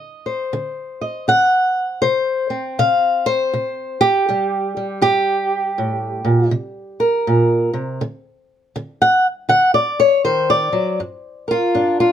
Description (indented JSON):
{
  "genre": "acoustic country blues, solo or duo",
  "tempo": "80 BPM",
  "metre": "4/4",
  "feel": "swing 63% on 8ths",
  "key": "G minor",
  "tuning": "A4 = 440 Hz",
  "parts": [
    { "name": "fingerpicked old ladder-braced acoustic guitar", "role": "solo", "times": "0.0-12.1 s", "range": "G2 to F#5", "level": "-15 LUFS", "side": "equal", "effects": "none" }
  ],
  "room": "light reverb",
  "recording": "close, detailed microphones",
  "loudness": "-15 LUFS",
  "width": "side -9 dB against mid",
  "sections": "0.0-11.0 A section; 11.0-12.1 B section",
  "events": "steel-string acoustic guitar solo 0.0-11.0",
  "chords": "0.0 D7b9; 2.0 C5; 5.0 Gm; 6.5 C5; 8.0 D; 11.0 Gm7",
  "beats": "0.53 1.28 | 2.03 2.78 3.53 4.28 | 5.02 5.77 6.52 7.27 | 8.01 8.76 9.51 10.25 | 11.00 11.74"
}